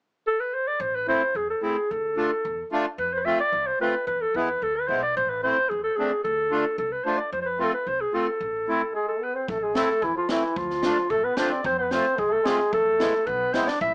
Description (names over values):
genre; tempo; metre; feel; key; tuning
klezmer; 111 BPM; 2/4; straight; A harmonic minor; A4 = 443 Hz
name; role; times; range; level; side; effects
dark clarinet; melody; 0.3-13.9 s; E4 to E5; -26 LUFS; equal; none
upright bass; bass; 0.8-13.9 s; A1 to F2; -44 LUFS; equal; none
accordion; accompaniment; 1.1-13.7 s; G#3 to F4; -29 LUFS; equal; none
bright trombone; second line; 8.9-13.9 s; E3 to E4; -33 LUFS; equal; none
street-band drum kit; drums; 9.5-13.9 s; kick drum, snare drum; -35 LUFS; equal; none
room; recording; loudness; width
moderate small room reverb, RT60 0.5 s; small speaker sound; -25 LUFS; mono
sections
0.8-9.5 A section; 9.5-13.9 A section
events
none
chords
0.0 N.C.; 0.8 Am; 1.9 Dm; 3.0 F; 4.1 E; 5.2 Am; 6.2 Dm; 7.3 F; 8.4 Am; 10.6 Dm; 11.6 F; 12.7 E